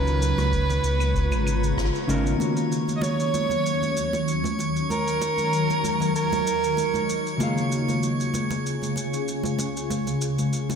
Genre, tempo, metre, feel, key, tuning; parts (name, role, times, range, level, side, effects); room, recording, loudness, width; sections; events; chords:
sunset chillout; 96 BPM; 4/4; swing 54% on 16ths; A4 = 440 Hz
breathy soprano saxophone; melody; 0.0-7.0 s; A#4 to D#5; -27 LUFS; right 3 dB; ping-pong delay, slapback echo
mellow electric guitar; accompaniment; 0.0-10.8 s; C#3 to E#5; -28 LUFS; left 1 dB; auto-pan, ping-pong delay
shimmering ambient pad; sustained chords; 0.0-10.8 s; C#2 to A#4; -28 LUFS; left 2 dB; chorus, built-in reverb, phaser
warm sub bass; bass; 0.0-2.4 s; G#1 to C#2; -24 LUFS; equal
drifting glass-harmonics texture; texture; 0.0-10.8 s; C#5 to C#6; -33 LUFS; right 3 dB; chorus, built-in reverb
shaker, rim click and claves; drums; 0.1-10.8 s; -35 LUFS; right 1 dB
congas; percussion; 0.4-10.8 s; -32 LUFS; right 1 dB; slapback echo
electronic kick drum; drums; 0.5-1.9 s; -30 LUFS; equal; overdrive
wet lush hall reverb, RT60 1.7 s, small room ambience; big arena sound; -22 LUFS; side -6 dB against mid
0.0-2.4 A section; 2.4-10.8 B section
band accent 1.8-2.1
0.0 C#7; 2.4 D#m7; 7.4 A#m7/C#